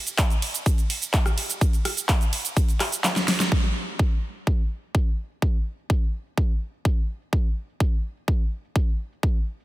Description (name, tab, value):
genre	EDM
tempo	126 BPM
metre	4/4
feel	straight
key	none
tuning	none
part	big-room dance drum kit	drums	0.1-9.6 s	handclaps, hi-hat, ride cymbal, rim click, shaker, snare drum	-25 LUFS	right 1 dB	low-pass filter on hats, low-pass filter on perc, low-pass filter on cymbals, low-pass filter on snare, low-pass filter on room
part	electronic kick drum	drums	0.2-9.3 s	none	-21 LUFS	equal	none
room	little or no reverb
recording	dense, heavily limited modern master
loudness	-22 LUFS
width	side -17 dB against mid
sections	0.0-3.5 A section; 3.5-9.6 B section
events	drop 0.0-3.5; kick drops out 3.0-3.5; drum fill 3.0-3.5; band accent 3.4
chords	none